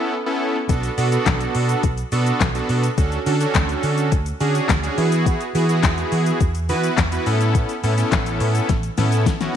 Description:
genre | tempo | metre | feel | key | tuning
dance-pop | 105 BPM | 4/4 | straight | unclear | A4 = 440 Hz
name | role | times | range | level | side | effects
big bright polysynth | accompaniment | 0.0-9.6 s | B3 to B4 | -22 LUFS | right 1 dB | sidechain pumping
vintage muted fingered electric bass | bass | 0.7-9.4 s | A1 to E3 | -21 LUFS | right 1 dB | sidechain pumping
smooth R&B drum kit | drums | 0.7-9.5 s | handclaps, hi-hat, kick drum, shaker, snare drum | -21 LUFS | left 3 dB | overdrive
room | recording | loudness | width
light reverb | 1960s-style stereo | -17 LUFS | side -9 dB against mid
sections
0.0-9.6 A section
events
drum fill 8.7-9.6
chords
0.0 Aadd9; 0.7 Bm7; 3.0 Dmaj7; 5.0 Eadd9; 7.3 Aadd9

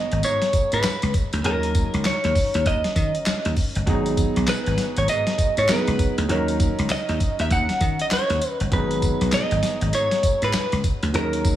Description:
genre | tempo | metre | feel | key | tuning
R&B, new jack swing | 99 BPM | 4/4 | swing 62% on 16ths | G# minor | A4 = 440 Hz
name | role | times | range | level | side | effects
direct-recorded clean electric guitar | melody | 0.0-11.6 s | A#4 to F#5 | -24 LUFS | equal | none
warm concert grand piano | accompaniment | 0.0-11.6 s | F#3 to A#4 | -28 LUFS | right 2 dB | none
dry thumbed slap bass | bass | 0.1-11.5 s | G1 to D#3 | -24 LUFS | equal | none
dusty soul sampler-style drum kit | drums | 0.1-11.6 s | handclaps, hi-hat, kick drum, snare drum, tambourine | -24 LUFS | equal | gated reverb
group handclap | percussion | 0.8-10.7 s | none | -39 LUFS | left 7 dB | none
room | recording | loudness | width
light reverb | small room ambience | -19 LUFS | side -12 dB against mid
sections
0.0-11.6 A section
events
none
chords
0.0 G#m7; 1.4 D#m7; 3.9 G#m7; 6.3 D#m7; 8.7 G#m7

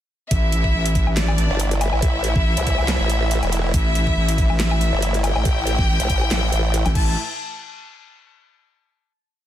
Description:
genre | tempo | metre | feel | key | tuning
heavy wobble dubstep | 140 BPM | 4/4 | swing 55% on 16ths, half-time | unclear | A4 = 439 Hz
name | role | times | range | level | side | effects
clear chamber violin section | melody | 0.3-7.1 s | D4 to A5 | -25 LUFS | left 2 dB | tape echo
supersaw chords | sustained chords | 0.3-7.2 s | A2 to E4 | -29 LUFS | equal | vintage 12-bit sampler grit, sidechain pumping
wobble bass | bass | 0.3-7.2 s | A1 | -20 LUFS | equal | chorus, overdrive
dubstep drum kit | drums | 0.3-7.0 s | crash cymbal, handclaps, hi-hat, snare drum, woodblock | -27 LUFS | left 1 dB | none
electronic kick drum | drums | 0.3-7.0 s | none | -20 LUFS | equal | none
formant-sweep wobble bass | bass | 1.5-6.8 s | E1 to C2 | -21 LUFS | equal | chorus, overdrive
room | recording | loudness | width
digital ambience | dense, heavily limited modern master | -17 LUFS | side -11 dB against mid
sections
0.3-7.2 drop; 7.2-8.9 final hit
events
drop 0.3-7.2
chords
0.3 A5; 7.2 N.C.

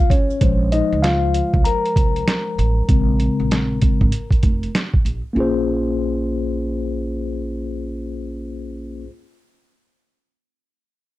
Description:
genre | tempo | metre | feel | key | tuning
hip hop, jazz-hop | 97 BPM | 4/4 | swing 63% on 16ths | Bb minor | A4 = 440 Hz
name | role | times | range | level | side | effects
mellow tine electric piano | accompaniment | 0.0-9.1 s | Db3 to Bb5 | -21 LUFS | left 3 dB | slow stereo tremolo, plate reverb
boom bap sampler-style drum kit | drums | 0.1-5.2 s | hi-hat, kick drum, snare drum | -18 LUFS | right 1 dB | none
upright bass | bass | 0.4-9.1 s | F1 to Db2 | -23 LUFS | right 1 dB | none
room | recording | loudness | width
light reverb | dark, warm production | -17 LUFS | side -16 dB against mid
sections
0.4-5.4 A section; 5.4-7.8 B section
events
tine electric piano solo 0.4-5.4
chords
0.4 Bbm9

